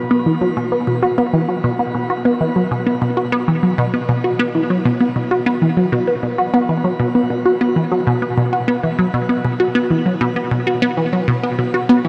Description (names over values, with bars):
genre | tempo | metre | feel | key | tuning
ambient | 98 BPM | 4/4 | straight | unclear | A4 = 437 Hz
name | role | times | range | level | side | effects
resonant blip pluck | solo | 0.0-12.1 s | B2 to F#4 | -17 LUFS | equal | chorus, phaser, analog delay
room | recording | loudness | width
wet shimmer reverb, RT60 8.6 s | none | -17 LUFS | mono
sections
0.0-12.1 A section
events
none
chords
none